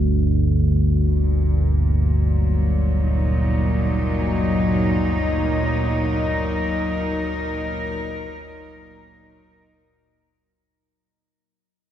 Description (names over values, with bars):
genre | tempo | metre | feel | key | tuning
dark ambient drone | free time | none | none | unclear | A4 = 440 Hz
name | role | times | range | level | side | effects
deep rumbling drone | drone | 0.0-10.6 s | G1 to D2 | -20 LUFS | equal | built-in reverb
quartz singing bowl | texture | 0.0-10.5 s | F#4 | -35 LUFS | left 2 dB | none
rich chamber cello section | sustained chords | 1.1-10.5 s | Bb2 to Bb4 | -22 LUFS | equal | none
room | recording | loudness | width
wet cathedral reverb, RT60 5.1 s | in a vast, echoing space, cassette tape | -18 LUFS | side -11 dB against mid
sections
0.0-10.5 A section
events
fade-out 4.2-10.5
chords
0.0 G5; 1.1 Ebm